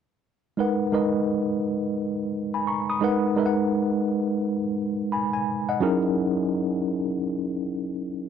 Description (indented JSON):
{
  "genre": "R&B",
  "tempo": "86 BPM",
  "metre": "4/4",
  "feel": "swing 62% on 16ths",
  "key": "G# minor",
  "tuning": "A4 = 438 Hz",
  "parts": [
    { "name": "tine electric piano", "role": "solo", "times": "0.6-8.3 s", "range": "F#3 to D#6", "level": "-23 LUFS", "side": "equal", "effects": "overdrive, fast stereo tremolo" }
  ],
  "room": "moderate booth ambience, RT60 0.2 s",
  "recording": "dry, close 1970s-style studio recording",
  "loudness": "-23 LUFS",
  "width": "side -8 dB against mid",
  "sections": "0.6-3.4 A section; 3.4-8.3 B section",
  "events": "none",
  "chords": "0.6 G#m9; 5.8 F#13",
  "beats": "| 0.57 1.27 1.97 2.67 | 3.37 4.06 4.76 5.46 | 6.16 6.85 7.55 8.25"
}